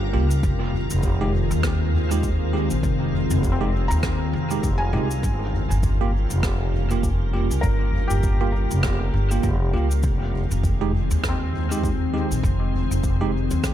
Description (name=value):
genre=ambient dub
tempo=100 BPM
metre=4/4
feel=swing 58% on 16ths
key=F minor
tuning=A4 = 440 Hz
part: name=soft additive organ-like pad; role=sustained chords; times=0.0-13.7 s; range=Db3 to Bb4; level=-28 LUFS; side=left 1 dB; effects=ensemble chorus, built-in reverb
part: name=felt-muted upright piano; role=arpeggios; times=0.0-13.7 s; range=C4 to Bb5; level=-33 LUFS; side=left 3 dB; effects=dub echo
part: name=upright bass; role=bass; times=0.0-13.7 s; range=F1 to Eb2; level=-22 LUFS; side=equal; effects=none
part: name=bell-like tine electric piano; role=stabs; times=0.1-13.3 s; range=Ab3 to G4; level=-30 LUFS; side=right 5 dB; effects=medium stereo tremolo, dub echo
part: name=soft-mallet drum kit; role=drums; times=0.3-13.7 s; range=cabasa, rim click, toms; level=-30 LUFS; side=equal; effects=dub echo
part: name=electronic kick drum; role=drums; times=0.4-13.7 s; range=none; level=-25 LUFS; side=equal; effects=none
room=small room ambience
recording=none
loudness=-20 LUFS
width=side -11 dB against mid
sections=0.4-13.7 A section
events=break 0.0-0.4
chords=0.4 Fm9; 5.2 Gm7b5; 10.0 Fm9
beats=| 0.43 1.03 1.63 2.23 | 2.83 3.43 4.03 4.63 | 5.23 5.83 6.43 7.03 | 7.63 8.23 8.83 9.43 | 10.03 10.63 11.23 11.83 | 12.43 13.03 13.63